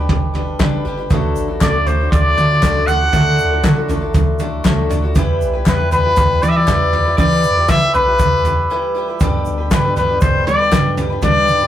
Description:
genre	indie folk with a building arrangement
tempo	118 BPM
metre	4/4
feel	straight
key	G major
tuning	A4 = 444 Hz
part	picked old ladder-braced acoustic guitar	accompaniment	0.0-11.7 s	D3 to B4	-23 LUFS	left 2 dB	none
part	hand-pumped harmonium	sustained chords	0.0-11.7 s	B2 to G4	-30 LUFS	equal	none
part	punchy sub bass	bass	0.0-11.7 s	G1 to G3	-20 LUFS	equal	none
part	soft brush drum kit	drums	0.1-11.3 s	kick drum, snare drum, toms	-17 LUFS	right 1 dB	none
part	group handclap	percussion	0.6-10.8 s	none	-30 LUFS	left 4 dB	none
part	egg shaker	percussion	1.1-11.6 s	none	-39 LUFS	right 6 dB	none
part	clear trumpet	melody	1.6-11.7 s	B4 to F#5	-16 LUFS	left 2 dB	none
part	glockenspiel with soft plastic mallets	second line	1.6-8.9 s	B5 to F#6	-26 LUFS	right 5 dB	none
room	moderate studio reverb, RT60 0.6 s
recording	rough rehearsal-room recording, warm saturation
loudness	-13 LUFS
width	side -11 dB against mid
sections	0.0-9.2 A section; 9.2-11.7 A section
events	break 8.7-9.2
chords	0.0 G; 1.1 D; 5.2 Em; 9.2 G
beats	0.10 0.60 | 1.11 1.62 2.12 2.63 | 3.13 3.64 4.15 4.66 | 5.16 5.67 6.17 6.68 | 7.19 7.69 8.20 8.70 | 9.21 9.71 10.22 10.72 | 11.23

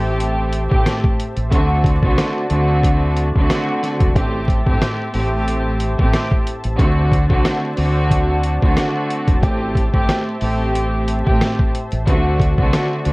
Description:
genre	hip hop, boom-bap hip-hop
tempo	91 BPM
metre	4/4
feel	swing 56% on 16ths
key	A dorian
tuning	A4 = 437 Hz
part	warm studio string section	accompaniment	0.0-13.1 s	A2 to G4	-20 LUFS	equal	cassette tape, high-pass filter, low-pass filter
part	warm analog pad	sustained chords	0.0-13.1 s	F#4 to A5	-27 LUFS	equal	wide subtle chorus, high-pass filter, low-pass filter
part	deep dub fingered electric bass	bass	0.0-13.1 s	E1 to D2	-20 LUFS	equal	none
part	dusty soul sampler-style drum kit	drums	0.2-13.1 s	hi-hat, kick drum, rim click, snare drum	-18 LUFS	equal	none
room	little or no reverb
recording	worn, warbling old tape, cassette tape, vinyl crackle, warbly pitch drift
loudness	-15 LUFS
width	side -24 dB against mid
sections	0.0-13.1 A section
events	none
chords	0.0 Am7; 1.5 D7; 4.2 Am7; 6.8 D7; 9.4 Am7; 12.1 D7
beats	0.20 0.86 | 1.52 2.18 2.84 3.50 | 4.15 4.81 5.47 6.13 | 6.79 7.45 8.11 8.77 | 9.43 10.09 10.75 11.41 | 12.07 12.73

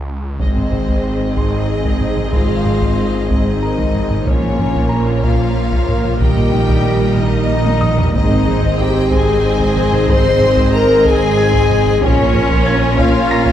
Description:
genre	cinematic, hybrid orchestral and electronic film score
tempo	62 BPM (dotted quarters)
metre	6/8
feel	straight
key	unclear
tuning	A4 = 440 Hz
part	snarling distorted saw bass	bass	0.0-13.5 s	Ab1 to Db2	-23 LUFS	equal	distortion
part	warm concert grand piano	texture	0.0-13.5 s	Bb4 to Bb6	-28 LUFS	right 1 dB	none
part	bright symphonic violin section	melody	0.4-13.5 s	C5 to C6	-28 LUFS	left 4 dB	none
part	rich symphonic violin section	second line	0.4-13.5 s	Bb4 to Eb5	-25 LUFS	left 1 dB	none
part	clear symphonic viola section	accompaniment	0.4-13.5 s	G3 to Ab4	-22 LUFS	right 3 dB	none
part	hollow soft pad	sustained chords	0.4-13.5 s	Eb3 to C5	-25 LUFS	right 1 dB	chorus
part	mellow French horn section	sustained chords	0.4-13.5 s	C4 to C5	-18 LUFS	left 4 dB	none
part	harp-like synth pluck	arpeggios	0.4-13.5 s	Eb3 to Bb4	-23 LUFS	left 2 dB	chorus
part	rich symphonic cello section	bass	0.4-13.5 s	Ab2 to Bb2	-22 LUFS	right 3 dB	none
part	rich symphonic double bass section	bass	0.4-13.5 s	Ab1 to Bb1	-22 LUFS	right 4 dB	none
part	taiko ensemble	drums	0.4-13.5 s	none	-19 LUFS	equal	none
room	moderate scoring stage reverb, RT60 1.7 s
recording	dark, warm production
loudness	-12 LUFS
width	side -10 dB against mid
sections	0.4-13.5 A section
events	break 0.0-0.4; drum fill 0.0-0.4, 7.7-8.1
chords	0.4 Ab; 4.3 Bbm; 6.2 Eb/Bb; 8.1 Ab; 12.0 Bbm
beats	| 0.40 1.37 | 2.34 3.31 | 4.27 5.24 | 6.21 7.18 | 8.14 9.11 | 10.08 11.05 | 12.02 12.98

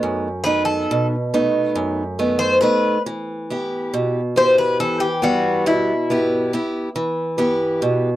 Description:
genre	greek folk, Greek bouzouki band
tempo	138 BPM (eighths)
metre	9/8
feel	straight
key	E harmonic minor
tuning	A4 = 436 Hz
part	picked acoustic archtop guitar	accompaniment	0.0-8.2 s	F#2 to G4	-19 LUFS	right 1 dB	none
part	Greek bouzouki	melody	0.4-6.6 s	E4 to C5	-18 LUFS	left 2 dB	none
room	moderate booth ambience, RT60 0.2 s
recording	dry, close 1970s-style studio recording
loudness	-17 LUFS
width	side -14 dB against mid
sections	0.0-7.0 A section; 7.0-8.2 A section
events	none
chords	0.0 B7; 3.0 Em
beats	0.00 0.44 0.87 1.31 1.74 2.18 2.62 | 3.05 3.49 3.92 4.36 4.79 5.23 5.66 6.10 6.53 | 6.96 7.40 7.83

